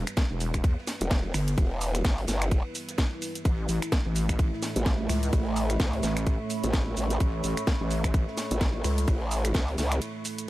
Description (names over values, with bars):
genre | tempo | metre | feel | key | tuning
bass house | 128 BPM | 4/4 | swing 58% on 16ths | unclear | A4 = 438 Hz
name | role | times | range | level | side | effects
dark analog pad | sustained chords | 0.0-10.5 s | G3 to C#5 | -36 LUFS | right 3 dB | chorus, sidechain pumping
wobble bass | bass | 0.0-9.1 s | E1 to E2 | -28 LUFS | equal | chorus, sidechain pumping
garage drum kit | drums | 0.1-10.5 s | finger snaps, hi-hat, shaker, snare drum | -33 LUFS | equal | none
open jazz drum kit | drums | 0.1-10.4 s | hi-hat, ride cymbal, snare drum | -44 LUFS | right 2 dB | high-pass filter on cymbals, high-pass filter on hats, high-pass filter on snare, high-pass filter on room
electronic kick drum | drums | 0.2-9.7 s | none | -25 LUFS | equal | none
growl bass | bass | 1.0-10.0 s | E1 to C#2 | -28 LUFS | equal | chorus, sidechain pumping
warbly tape-like pad | texture | 3.9-10.5 s | A4 to C#6 | -38 LUFS | equal | chorus, built-in reverb, sidechain pumping
room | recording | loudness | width
small room ambience | none | -25 LUFS | side -16 dB against mid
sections
0.0-10.5 A section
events
break 10.0-10.5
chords
0.0 Em; 3.5 A